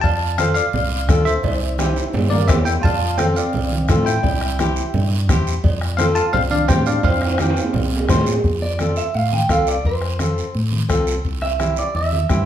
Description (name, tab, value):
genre	latin, cumbia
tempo	171 BPM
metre	4/4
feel	straight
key	F major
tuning	A4 = 441 Hz
part	barky tine electric piano	melody	0.0-8.1 s	Bb4 to A5	-22 LUFS	left 1 dB	fast stereo tremolo
part	fingered electric bass	bass	0.0-12.5 s	C2 to A2	-22 LUFS	equal	none
part	bombo	percussion	0.0-12.5 s	none	-22 LUFS	left 1 dB	none
part	cowbell and timbales	percussion	0.0-8.4 s	none	-26 LUFS	right 3 dB	none
part	guiro	percussion	0.0-12.5 s	none	-32 LUFS	right 6 dB	none
part	flamenco guitar	accompaniment	0.4-12.5 s	C4 to C5	-24 LUFS	left 4 dB	none
part	congas	percussion	0.4-12.5 s	none	-24 LUFS	right 2 dB	none
part	electric guitar at the edge of break-up	second line	2.3-12.5 s	Bb3 to G5	-24 LUFS	right 2 dB	none
room	wet large studio reverb, RT60 0.8 s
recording	band playing live in one room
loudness	-16 LUFS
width	side -10 dB against mid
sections	0.0-8.4 A section; 8.4-12.5 B section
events	drum fill 1.4-2.8, 7.0-8.4; clean electric guitar solo 8.4-12.5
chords	0.0 F; 1.4 C7; 2.8 F; 4.2 C; 5.6 F; 11.2 C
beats	| 0.04 0.39 0.74 1.09 | 1.44 1.79 2.14 2.49 | 2.84 3.19 3.54 3.89 | 4.24 4.59 4.94 5.29 | 5.64 5.99 6.34 6.69 | 7.04 7.39 7.74 8.09 | 8.44 8.79 9.14 9.49 | 9.85 10.20 10.55 10.90 | 11.25 11.60 11.95 12.30